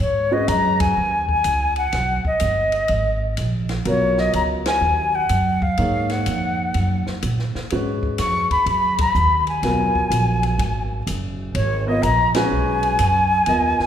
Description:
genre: modal jazz.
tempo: 125 BPM.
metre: 4/4.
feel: swing 67% on 8ths.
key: G# dorian.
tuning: A4 = 443 Hz.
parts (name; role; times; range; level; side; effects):
silver concert flute; melody; 0.0-13.9 s; C#5 to C#6; -20 LUFS; left 1 dB; none.
upright bass; bass; 0.0-13.8 s; F#1 to A#2; -22 LUFS; right 1 dB; none.
warm grand piano; accompaniment; 0.3-0.9, 3.9-13.9 s; F#3 to D#5; -25 LUFS; equal; none.
compact cocktail drum kit; drums; 0.5-13.9 s; hi-hat, kick drum, ride cymbal, snare drum; -30 LUFS; left 1 dB; none.
room: wet recital hall reverb, RT60 1.6 s.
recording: recorded in a church or concert hall.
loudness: -17 LUFS.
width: side -9 dB against mid.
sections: 0.0-13.9 A section.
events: band accent 0.7, 4.6, 8.9, 12.3.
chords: 0.0 G#m7.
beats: | 0.00 0.48 0.96 1.45 | 1.93 2.41 2.89 3.37 | 3.86 4.34 4.82 5.30 | 5.78 6.26 6.75 7.23 | 7.71 8.19 8.67 9.15 | 9.63 10.11 10.59 11.07 | 11.55 12.03 12.51 12.99 | 13.47.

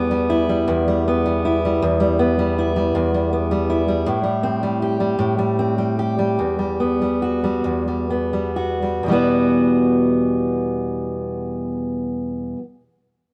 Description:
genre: pop.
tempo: 40-54 BPM (dotted quarters).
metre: 6/8.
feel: straight.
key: E minor.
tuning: A4 = 439 Hz.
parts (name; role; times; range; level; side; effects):
fingerpicked steel-string acoustic guitar; accompaniment; 0.0-12.6 s; E2 to G4; -20 LUFS; equal; none.
room: light reverb.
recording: rough rehearsal-room recording.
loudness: -20 LUFS.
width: mono.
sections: 0.0-9.1 A section; 9.1-12.0 B section.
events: slowing down 4.1-9.1.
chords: 0.0 Em; 4.1 Am7; 6.4 Emadd9.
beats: 0.69 | 1.82 2.94 | 4.06 5.19 | 6.38 7.65 | 9.06 10.54.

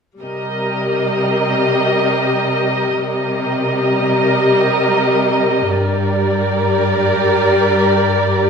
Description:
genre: cinematic, emotional film score for orchestra.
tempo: free time.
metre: none.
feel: none.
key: C minor.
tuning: A4 = 440 Hz.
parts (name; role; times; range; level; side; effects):
warm studio violin section; second line; 0.2-8.5 s; Bb4 to Eb5; -17 LUFS; right 2 dB; none.
warm studio viola section; accompaniment; 0.2-8.5 s; G3 to G4; -18 LUFS; left 1 dB; none.
warm studio cello section; bass; 0.2-8.5 s; G2 to C3; -21 LUFS; left 1 dB; none.
room: moderate scoring stage reverb, RT60 1.6 s.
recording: minimal, uncompressed stereo recording.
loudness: -13 LUFS.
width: side -6 dB against mid.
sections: 0.2-8.5 A section.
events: none.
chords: 0.2 Cm7; 5.8 Gm.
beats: free time.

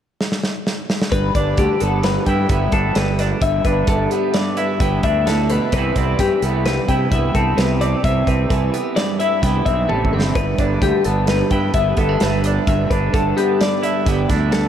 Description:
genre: math rock and midwest emo.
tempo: 130 BPM.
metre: 5/4.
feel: straight.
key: G major.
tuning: A4 = 440 Hz.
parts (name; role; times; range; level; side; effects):
modern studio drum kit; drums; 0.2-14.6 s; hi-hat, kick drum, snare drum, toms; -22 LUFS; equal; none.
twangy electric guitar; accompaniment; 1.1-14.7 s; G2 to E4; -22 LUFS; right 6 dB; lush chorus.
twelve-string electric guitar; arpeggios; 1.1-14.7 s; G4 to G5; -20 LUFS; left 4 dB; wide subtle chorus.
fuzz fingered electric bass; bass; 1.1-14.7 s; G1 to C3; -20 LUFS; equal; overdrive.
room: wet huge ambient reverb, RT60 8.1 s.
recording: dreamy mix soaked in reverb.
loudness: -15 LUFS.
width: side -9 dB against mid.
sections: 0.0-1.1 A section; 1.1-14.7 B section.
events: drum fill 0.2-1.1, 9.9-10.4.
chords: 0.0 N.C.; 1.1 G6; 5.7 Cmaj7; 10.4 G6.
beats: 0.20 0.66 | 1.12 1.58 2.04 2.50 2.96 | 3.42 3.88 4.34 4.80 5.27 | 5.73 6.19 6.65 7.12 7.58 | 8.04 8.50 8.96 9.43 9.89 | 10.36 10.82 11.28 11.75 12.21 | 12.67 13.14 13.60 14.06 14.53.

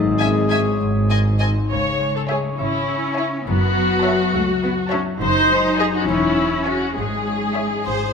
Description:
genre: cinematic, playful, whimsical film cue.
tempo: 68 BPM (dotted quarters).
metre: 6/8.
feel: straight.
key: C# minor.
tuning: A4 = 440 Hz.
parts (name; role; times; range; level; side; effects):
warm clarinet; second line; 0.0-1.4 s; G#4; -26 LUFS; left 2 dB; none.
mellow French horn section; sustained chords; 0.0-1.4 s; G#3; -25 LUFS; left 5 dB; none.
concert harp; arpeggios; 0.0-8.1 s; E2 to E5; -24 LUFS; left 6 dB; none.
mellow tuba; bass; 0.0-1.6 s; G#1; -27 LUFS; right 4 dB; none.
rich studio double bass section; bass; 0.0-8.1 s; E1 to C#2; -25 LUFS; right 2 dB; none.
warm studio cello section; bass; 0.0-8.1 s; G#2 to D#4; -25 LUFS; right 1 dB; none.
rich studio violin section; melody; 0.2-7.8 s; G#5 to A5; -30 LUFS; left 3 dB; none.
rich studio violin section; second line; 0.2-8.1 s; B#4 to E5; -28 LUFS; left 1 dB; none.
rich studio viola section; accompaniment; 0.2-8.1 s; B#3 to C#5; -21 LUFS; equal; none.
room: moderate scoring stage reverb, RT60 2.0 s.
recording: none.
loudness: -17 LUFS.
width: side -6 dB against mid.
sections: 0.0-1.7 A section; 1.7-8.1 B section.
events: none.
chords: 0.0 C#m/G#; 0.8 G#; 1.7 C#m; 3.5 F#m7; 5.2 G#7/F#; 6.1 C#m/E; 7.0 C#m/G#.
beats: 0.80 | 1.70 2.58 | 3.46 4.34 | 5.21 6.08 | 6.97 7.86.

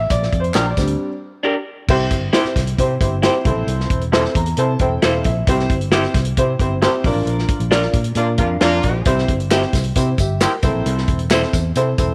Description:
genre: uptempo 1960s-style soul.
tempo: 134 BPM.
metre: 4/4.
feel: straight.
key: C mixolydian.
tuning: A4 = 436 Hz.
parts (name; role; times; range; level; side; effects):
warm grand piano; accompaniment; 0.0-12.1 s; G3 to Bb5; -22 LUFS; equal; none.
fingered electric bass; bass; 0.0-12.1 s; E1 to C3; -23 LUFS; equal; none.
warm soul drum kit; drums; 0.1-12.1 s; crash cymbal, hi-hat, kick drum, snare drum; -22 LUFS; equal; none.
tambourine and handclaps; percussion; 0.1-0.9, 9.1-12.1 s; none; -32 LUFS; equal; none.
electric guitar through a small old amp; stabs; 0.5-11.4 s; D4 to C5; -24 LUFS; equal; tube saturation, phaser.
warm horn section; second line; 8.2-9.0 s; Bb3 to F4; -26 LUFS; equal; none.
room: light reverb, small room ambience.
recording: none.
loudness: -18 LUFS.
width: mono.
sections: 0.0-1.9 A section; 1.9-12.1 B section.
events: grand piano solo 0.0-1.9; break 1.0-1.9; grand piano fill 4.1-5.5; band accent 7.3-9.1.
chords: 0.0 Bb6; 1.9 C; 3.5 Am; 5.5 C; 7.0 Bb; 9.1 C; 10.6 Am.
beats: | 0.10 0.55 1.00 1.44 | 1.89 2.34 2.79 3.23 | 3.68 4.13 4.58 5.02 | 5.47 5.92 6.37 6.82 | 7.27 7.71 8.16 8.61 | 9.06 9.51 9.96 10.41 | 10.86 11.30 11.75.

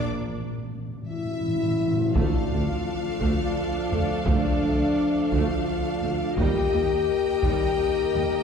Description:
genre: cinematic, epic orchestral film score.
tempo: 57 BPM (dotted quarters).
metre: 6/8.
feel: straight.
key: D phrygian.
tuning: A4 = 440 Hz.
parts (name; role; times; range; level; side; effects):
rich studio violin section; melody; 0.0-8.4 s; D5 to G5; -37 LUFS; left 2 dB; none.
timpani; percussion; 0.1-2.1 s; A2; -30 LUFS; left 1 dB; none.
dark French horn section; sustained chords; 1.1-8.4 s; D4 to G4; -26 LUFS; left 3 dB; none.
dark trombone section; sustained chords; 2.1-8.4 s; Eb3 to Bb3; -34 LUFS; right 4 dB; none.
clear symphonic violin section; second line; 2.2-8.4 s; A4 to F5; -34 LUFS; left 2 dB; none.
rich symphonic viola section; accompaniment; 2.2-8.4 s; G3 to G4; -34 LUFS; right 2 dB; none.
mellow tuba; bass; 2.2-8.3 s; D2 to Eb2; -35 LUFS; right 3 dB; none.
rich symphonic double bass section; bass; 2.2-8.2 s; D2 to Eb2; -33 LUFS; right 1 dB; none.
warm studio cello section; bass; 2.2-8.2 s; D2 to Eb2; -35 LUFS; right 2 dB; none.
taiko ensemble; drums; 2.2-8.1 s; none; -28 LUFS; equal; none.
room: wet concert hall reverb, RT60 2.1 s.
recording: heard from further back in the room.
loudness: -22 LUFS.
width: side -6 dB against mid.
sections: 0.0-2.2 A section; 2.2-8.4 B section.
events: break 0.0-2.2; timpani fill 0.0-2.2; drum fill 1.1-2.2.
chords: 0.0 N.C.; 2.2 Dm; 6.4 Eb.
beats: | 0.05 1.10 | 2.16 3.21 | 4.27 5.32 | 6.38 7.43.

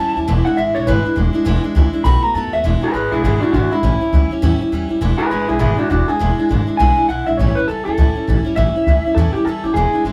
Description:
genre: rock.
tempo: 203 BPM.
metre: 4/4.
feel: swing 60% on 8ths.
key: E mixolydian.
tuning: A4 = 440 Hz.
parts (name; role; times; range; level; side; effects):
electric guitar through a small old amp; melody; 0.0-10.0 s; D4 to B5; -21 LUFS; equal; none.
picked steel-string acoustic guitar; accompaniment; 0.0-10.1 s; E2 to F#4; -22 LUFS; equal; none.
upright bass; bass; 0.0-10.1 s; E1 to F#2; -19 LUFS; equal; none.
room: moderate small room reverb, RT60 0.5 s.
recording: band playing live in one room.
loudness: -16 LUFS.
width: mono.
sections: 0.0-2.6 A section; 2.6-10.1 B section.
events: clean electric guitar solo 0.0-2.6.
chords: 0.3 E7; 2.0 B7; 2.6 E7; 3.8 A7; 5.0 E7; 7.4 A7.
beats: | 0.28 0.57 0.87 1.16 | 1.46 1.75 2.05 2.35 | 2.64 2.94 3.23 3.53 | 3.83 4.12 4.42 4.72 | 5.01 5.31 5.61 5.90 | 6.20 6.50 6.79 7.09 | 7.38 7.68 7.97 8.27 | 8.57 8.86 9.16 9.45 | 9.75 10.04.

